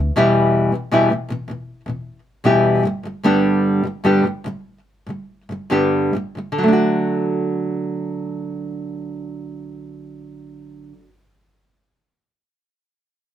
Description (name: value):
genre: pop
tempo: 68-80 BPM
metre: 4/4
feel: straight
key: D major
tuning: A4 = 441 Hz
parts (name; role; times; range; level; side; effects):
- nylon-string guitar; accompaniment; 0.0-11.1 s; E2 to G4; -18 LUFS; equal; none
room: moderate small room reverb, RT60 0.5 s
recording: faint mains hum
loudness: -16 LUFS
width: side -10 dB against mid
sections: 0.0-6.6 A section; 6.6-10.1 B section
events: slowing down 0.2-6.6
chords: 0.2 Em; 2.8 G; 6.6 D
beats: | 0.17 0.92 1.68 2.45 | 3.24 4.04 4.86 5.71 | 6.58 7.46 8.35 9.24